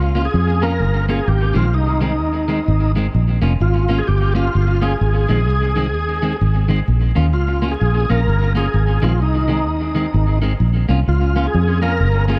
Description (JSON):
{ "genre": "ska", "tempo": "129 BPM", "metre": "4/4", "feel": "swing 61% on 8ths", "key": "Bb dorian", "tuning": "A4 = 440 Hz", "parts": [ { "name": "overdriven tonewheel organ", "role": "melody", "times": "0.0-12.4 s", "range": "Eb4 to Bb4", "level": "-24 LUFS", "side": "equal", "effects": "chorus vibrato, slow rotary speaker, tape echo" }, { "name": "fingered electric bass", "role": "bass", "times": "0.0-12.4 s", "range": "F1 to F2", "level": "-19 LUFS", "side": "equal", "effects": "none" }, { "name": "electric guitar at the edge of break-up", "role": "accompaniment", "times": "0.1-12.4 s", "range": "Eb3 to F4", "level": "-26 LUFS", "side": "equal", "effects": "tape echo" } ], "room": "little or no reverb", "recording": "dark, warm production, vinyl crackle, lossy compression artefacts", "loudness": "-17 LUFS", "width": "mono", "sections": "0.0-12.4 A section", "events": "none", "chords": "0.0 Bbm; 1.3 Ab; 3.1 Bbm; 5.0 Ab; 6.9 Bbm; 8.7 Ab; 10.6 Bbm" }